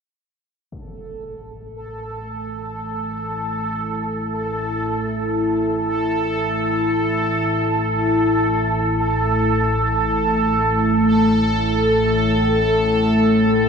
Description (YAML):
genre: dark ambient drone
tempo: free time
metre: none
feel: none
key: unclear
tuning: A4 = 440 Hz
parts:
  - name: dark analog pad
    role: sustained chords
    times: 2.3-13.7 s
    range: A3 to A4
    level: -20 LUFS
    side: left 1 dB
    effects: chorus
  - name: analog drone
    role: drone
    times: 1.3-13.7 s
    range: A1 to A2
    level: -26 LUFS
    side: left 1 dB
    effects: chorus, phaser
  - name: impact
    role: percussion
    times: 0.7-0.9 s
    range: none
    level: -44 LUFS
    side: left 1 dB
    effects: low-pass filter on sfx
  - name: bubbling stepped-filter texture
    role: texture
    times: 1.0-13.7 s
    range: A4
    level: -22 LUFS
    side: right 2 dB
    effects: chorus, built-in reverb
room: wet huge ambient reverb, RT60 7.1 s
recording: none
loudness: -17 LUFS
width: side -6 dB against mid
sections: 0.7-13.7 A section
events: fade-in on synth drone 0.7-13.7; fade-in on impacts and reversed cymbals 0.7-13.7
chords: 0.7 A5